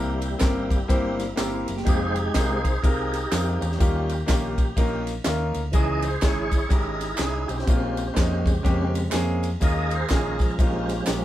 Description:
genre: uptempo gospel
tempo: 124 BPM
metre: 4/4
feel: swing 62% on 8ths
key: unclear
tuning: A4 = 440 Hz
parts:
  - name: clear baby grand piano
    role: accompaniment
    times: 0.0-11.2 s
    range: Bb2 to C5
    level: -28 LUFS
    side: left 1 dB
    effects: none
  - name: tonewheel organ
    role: sustained chords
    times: 0.0-11.2 s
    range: Db3 to Eb5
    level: -28 LUFS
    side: right 1 dB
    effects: slow rotary speaker, overdrive, chorus vibrato
  - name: hollow-body short-scale fingered electric bass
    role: bass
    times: 0.0-11.2 s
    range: F1 to F2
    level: -28 LUFS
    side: equal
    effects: none
  - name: tight funk drum kit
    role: drums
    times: 0.2-11.2 s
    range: kick drum, ride cymbal, snare drum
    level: -24 LUFS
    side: equal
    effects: none
  - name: tambourine and handclaps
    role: percussion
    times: 0.2-11.2 s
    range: none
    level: -37 LUFS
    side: right 1 dB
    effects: none
  - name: clean electric guitar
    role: second line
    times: 1.4-2.0 s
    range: Bb3 to E5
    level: -32 LUFS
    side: right 1 dB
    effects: none
room: light reverb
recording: band playing live in one room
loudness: -21 LUFS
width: side -13 dB against mid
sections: 0.0-11.2 A section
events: tonewheel organ solo 0.0-11.2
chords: 0.0 C7; 1.9 Fm9; 3.8 Eb9; 5.7 Dbmadd9; 7.7 Bbm9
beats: 0.41 0.90 1.38 | 1.86 2.35 2.83 3.32 | 3.80 4.29 4.77 5.25 | 5.74 6.22 6.71 7.19 | 7.68 8.16 8.65 9.13 | 9.62 10.10 10.58 11.07

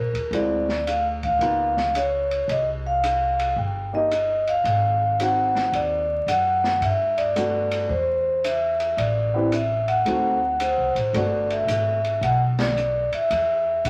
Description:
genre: jazz, small-group swing and bop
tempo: 111 BPM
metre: 4/4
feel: swing 67% on 8ths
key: G major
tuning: A4 = 442 Hz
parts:
  - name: vibraphone with medium mallets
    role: melody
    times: 0.0-13.9 s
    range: Bb4 to G5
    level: -24 LUFS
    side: equal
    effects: none
  - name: upright bass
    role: bass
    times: 0.0-13.9 s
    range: G1 to B2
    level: -31 LUFS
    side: equal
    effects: none
  - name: open jazz drum kit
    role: drums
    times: 0.1-13.9 s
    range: hi-hat, kick drum, ride cymbal, snare drum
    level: -35 LUFS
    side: equal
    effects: none
  - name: warm grand piano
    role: accompaniment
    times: 0.3-12.0 s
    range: Ab3 to G4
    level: -30 LUFS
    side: equal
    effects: none
room: moderate large studio reverb, RT60 0.8 s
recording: vinyl crackle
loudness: -22 LUFS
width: mono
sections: 0.0-11.1 A section; 11.1-13.9 A section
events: band accent 12.5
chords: 0.3 Dm7b5; 1.4 C#13; 2.5 Cm; 4.6 Ab7#11; 6.8 Gmaj9; 7.9 C/E; 9.0 Am7; 10.1 D7b9; 11.1 Gmaj9; 13.3 N.C.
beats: | 0.32 0.86 1.40 1.94 | 2.48 3.02 3.57 4.11 | 4.65 5.19 5.73 6.27 | 6.81 7.35 7.89 8.43 | 8.97 9.52 10.06 10.60 | 11.14 11.68 12.22 12.76 | 13.30 13.85

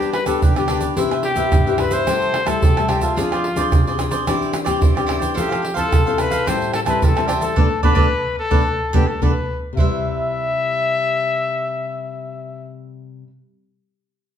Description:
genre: samba and choro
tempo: 109 BPM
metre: 4/4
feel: straight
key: C major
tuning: A4 = 440 Hz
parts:
  - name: mellow trumpet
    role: melody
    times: 0.0-12.7 s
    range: F4 to E5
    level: -22 LUFS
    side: left 2 dB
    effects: none
  - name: cavaquinho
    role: accompaniment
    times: 0.0-13.3 s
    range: D4 to A5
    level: -24 LUFS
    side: right 2 dB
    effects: none
  - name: nylon-string guitar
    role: accompaniment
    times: 0.0-13.4 s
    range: G2 to A4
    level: -24 LUFS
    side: left 6 dB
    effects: none
  - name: egg shaker, pandeiro, tamborim and surdo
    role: percussion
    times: 0.0-9.9 s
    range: none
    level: -19 LUFS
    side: right 2 dB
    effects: none
room: wet large studio reverb, RT60 1.0 s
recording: band playing live in one room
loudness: -16 LUFS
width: side -9 dB against mid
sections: 0.0-9.8 A section; 9.8-12.0 B section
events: band accent 7.6-9.8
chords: 0.0 G; 1.0 Cmaj7; 2.1 Am7/C; 3.2 Fm6; 4.3 Cadd9/E; 5.4 Fmaj7; 6.5 Am7; 7.6 Asus4; 9.8 Cmaj7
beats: 0.42 | 0.97 1.52 2.07 2.62 | 3.17 3.72 4.28 4.83 | 5.38 5.92 6.47 7.02 | 7.57 8.12 8.67 9.22 | 9.77 10.32 10.87 11.42

